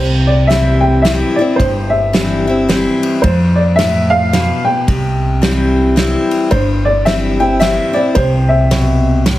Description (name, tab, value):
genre	honky-tonk and classic country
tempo	110 BPM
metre	3/4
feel	swing 62% on 8ths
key	C major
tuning	A4 = 440 Hz
part	dark upright piano	melody	0.0-9.2 s	C5 to G5	-16 LUFS	equal	none
part	picked steel-string acoustic guitar	accompaniment	0.0-9.4 s	F2 to E4	-16 LUFS	left 2 dB	none
part	upright bass	bass	0.0-9.4 s	G1 to F2	-15 LUFS	equal	none
part	unplugged drum kit	drums	0.5-9.4 s	kick drum, ride cymbal, snare drum	-19 LUFS	right 1 dB	none
room	moderate large studio reverb, RT60 1.3 s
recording	heavily compressed radio sound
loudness	-11 LUFS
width	side -15 dB against mid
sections	0.0-9.4 A section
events	none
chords	0.0 C; 3.2 F; 4.9 C